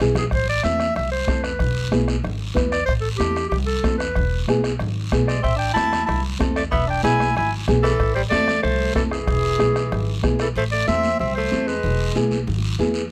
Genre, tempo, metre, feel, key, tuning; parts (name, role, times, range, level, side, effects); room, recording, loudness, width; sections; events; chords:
latin, cumbia; 188 BPM; 4/4; straight; A harmonic minor; A4 = 441 Hz
nylon-string guitar; accompaniment; 0.0-13.0 s; B3 to B4; -26 LUFS; equal
upright bass; bass; 0.0-13.0 s; E1 to E2; -27 LUFS; equal
bombo; percussion; 0.0-10.6 s; -28 LUFS; equal
guiro; percussion; 0.0-13.1 s; -36 LUFS; equal
congas; percussion; 0.1-13.0 s; -32 LUFS; equal
warm clarinet; melody; 0.2-12.2 s; G4 to A5; -25 LUFS; equal
raspy tenor saxophone; second line; 5.3-12.2 s; E3 to E4; -29 LUFS; equal
light reverb; close, detailed microphones; -21 LUFS; mono
0.3-10.6 A section; 10.6-13.1 A section
drum fill 0.0-0.3
0.3 Am; 1.6 E; 2.9 Am; 4.2 E; 5.4 Am; 6.7 E; 8.0 Am; 9.3 E; 10.6 Am; 11.8 E